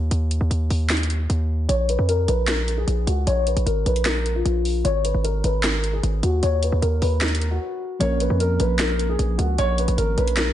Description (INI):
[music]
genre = hip hop, trap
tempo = 152 BPM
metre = 4/4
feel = half-time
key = Bb phrygian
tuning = A4 = 440 Hz
[part]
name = hard-hitting 808-style bass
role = bass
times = 0.0-10.5 s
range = Ab1 to F2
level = -21 LUFS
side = equal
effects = none
[part]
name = trap drum kit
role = drums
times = 0.1-10.5 s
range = handclaps, hi-hat, snare drum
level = -26 LUFS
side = equal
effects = overdrive
[part]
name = dark concert grand piano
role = melody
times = 1.7-10.5 s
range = F4 to Db5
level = -24 LUFS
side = left 2 dB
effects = wide subtle chorus, low-pass filter, diffuse ambient delay
[part]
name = mellow tine electric piano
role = accompaniment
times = 8.0-10.5 s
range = F3 to Bb4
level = -27 LUFS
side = right 2 dB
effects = slow stereo tremolo, low-pass filter
[sound]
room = light reverb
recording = nothing above 10.4 kHz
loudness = -19 LUFS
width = side -11 dB against mid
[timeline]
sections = 0.0-10.5 A section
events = break 0.0-1.7, 7.6-8.0; filter sweep 0.0-8.0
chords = 0.1 N.C.; 4.8 Ab5; 6.4 Ebm; 8.0 Bbm